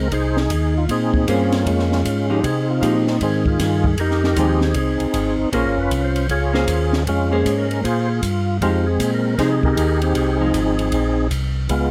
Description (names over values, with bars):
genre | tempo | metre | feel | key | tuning
soul jazz organ trio | 156 BPM | 4/4 | swing 64% on 8ths | F minor | A4 = 440 Hz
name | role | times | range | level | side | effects
percussive tonewheel organ | melody | 0.0-11.9 s | Eb3 to Db5 | -22 LUFS | equal | slow rotary speaker, overdrive, chorus vibrato
mellow tonewheel organ | bass | 0.0-11.9 s | F1 to C3 | -23 LUFS | equal | chorus vibrato, slow rotary speaker
open jazz drum kit | drums | 0.1-11.8 s | hi-hat, kick drum, ride cymbal, snare drum | -28 LUFS | equal | none
archtop guitar, miked and amplified | accompaniment | 1.3-10.9 s | F3 to C5 | -26 LUFS | equal | none
room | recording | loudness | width
light reverb | none | -19 LUFS | mono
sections
0.0-11.9 A section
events
none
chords
0.0 Fm7; 0.9 Bbm9; 2.4 Fm9; 5.5 Bbm9; 8.6 Fm9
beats
0.12 0.50 | 0.89 1.28 1.66 2.05 | 2.44 2.82 3.21 3.60 | 3.98 4.37 4.75 5.14 | 5.52 5.91 6.30 6.68 | 7.07 7.45 7.84 8.22 | 8.61 8.99 9.38 9.76 | 10.15 10.54 10.92 11.30 | 11.69